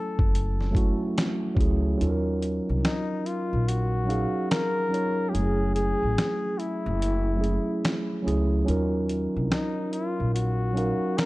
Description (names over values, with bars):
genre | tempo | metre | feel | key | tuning
lo-fi hip hop | 72 BPM | 4/4 | swing 64% on 16ths | unclear | A4 = 440 Hz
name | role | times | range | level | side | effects
trumpet with bucket mute | melody | 0.0-11.3 s | Eb4 to Bb4 | -30 LUFS | left 2 dB | low-pass filter
mellow tine electric piano | accompaniment | 0.0-11.3 s | Gb3 to Ab5 | -28 LUFS | right 2 dB | cassette tape, low-pass filter
upright bass | bass | 0.2-10.9 s | Gb1 to Eb2 | -26 LUFS | equal | none
dusty soul sampler-style drum kit | drums | 0.2-11.3 s | finger snaps, hi-hat, kick drum, snare drum | -26 LUFS | equal | none
room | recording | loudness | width
light reverb, studio reverb | dark, warm production | -23 LUFS | side -19 dB against mid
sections
0.0-2.0 A section; 2.0-11.3 A section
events
kick muted 2.0-11.3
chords
0.0 Gbm9; 2.0 Ebm9; 5.3 Gbm9; 8.7 Ebm9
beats
0.33 1.17 | 2.00 2.83 3.67 4.50 | 5.33 6.17 7.00 7.83 | 8.67 9.50 10.33 11.17